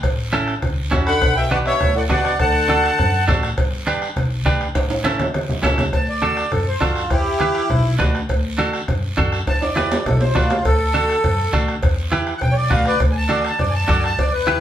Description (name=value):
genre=latin, cumbia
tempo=204 BPM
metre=4/4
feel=straight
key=D major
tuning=A4 = 445 Hz
part: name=upright bass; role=bass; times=0.0-14.6 s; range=G1 to F#2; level=-23 LUFS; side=equal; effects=none
part: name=bombo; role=percussion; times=0.0-14.6 s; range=none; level=-23 LUFS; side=left 1 dB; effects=none
part: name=congas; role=percussion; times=0.0-14.5 s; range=none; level=-27 LUFS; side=left 1 dB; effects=none
part: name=cowbell and timbales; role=percussion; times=0.0-14.3 s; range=none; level=-26 LUFS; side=right 3 dB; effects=none
part: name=guiro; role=percussion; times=0.0-14.6 s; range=none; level=-34 LUFS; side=right 2 dB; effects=none
part: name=semi-hollow electric guitar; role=accompaniment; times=0.3-14.6 s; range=C#4 to B4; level=-22 LUFS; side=right 3 dB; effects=none
part: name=accordion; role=melody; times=1.1-3.2, 5.9-14.6 s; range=E4 to B5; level=-20 LUFS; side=equal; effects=light tremolo tuning
part: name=bright trombone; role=second line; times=1.1-3.2 s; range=A2 to D3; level=-24 LUFS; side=left 1 dB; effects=none
room=wet studio reverb, RT60 0.6 s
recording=band playing live in one room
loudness=-16 LUFS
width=side -10 dB against mid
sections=0.0-5.9 A section; 5.9-14.6 B section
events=drum fill 4.8-5.9, 9.5-10.7; accordion solo 5.9-14.6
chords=0.0 A; 1.2 Bm; 2.4 D; 3.6 G; 4.8 A; 5.9 D; 7.1 Em; 7.7 Bm; 8.3 D; 9.5 Em; 10.1 Bm; 10.7 D; 11.8 Em; 12.4 Bm; 13.0 D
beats=| 0.04 0.33 0.63 0.92 | 1.22 1.51 1.81 2.10 | 2.40 2.69 2.98 3.28 | 3.57 3.87 4.16 4.46 | 4.75 5.05 5.34 5.64 | 5.93 6.23 6.52 6.82 | 7.11 7.41 7.70 8.00 | 8.29 8.59 8.88 9.18 | 9.47 9.77 10.06 10.36 | 10.65 10.94 11.24 11.53 | 11.83 12.12 12.42 12.71 | 13.01 13.30 13.60 13.89 | 14.18 14.48